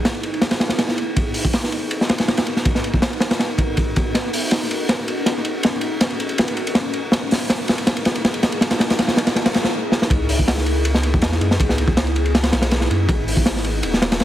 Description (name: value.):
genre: drum and bass, jungle.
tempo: 161 BPM.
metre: 4/4.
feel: straight.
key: C# dorian.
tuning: A4 = 440 Hz.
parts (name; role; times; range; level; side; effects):
crunchy breakbeat drum kit; drums; 0.1-14.2 s; hi-hat, kick drum, ride cymbal, snare drum; -18 LUFS; equal; none.
saturated sub bass; bass; 10.1-14.2 s; D#1 to F#2; -21 LUFS; equal; tube saturation.
room: light reverb, small room ambience.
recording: heavily compressed radio sound, multiband compression.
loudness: -17 LUFS.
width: side -12 dB against mid.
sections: 0.0-10.1 A section; 10.1-14.2 B section.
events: build-up 0.0-10.1; drum fill 4.1-9.7, 9.9; drop 10.1-14.2.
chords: none.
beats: 0.04 0.42 0.79 | 1.16 1.54 1.91 2.28 | 2.65 3.03 3.40 3.77 | 4.14 4.52 4.89 5.26 | 5.63 6.01 6.38 6.75 | 7.13 7.50 7.87 8.24 | 8.62 8.99 9.36 9.73 | 10.11 10.48 10.85 11.22 | 11.60 11.97 12.34 12.72 | 13.09 13.46 13.83 14.21.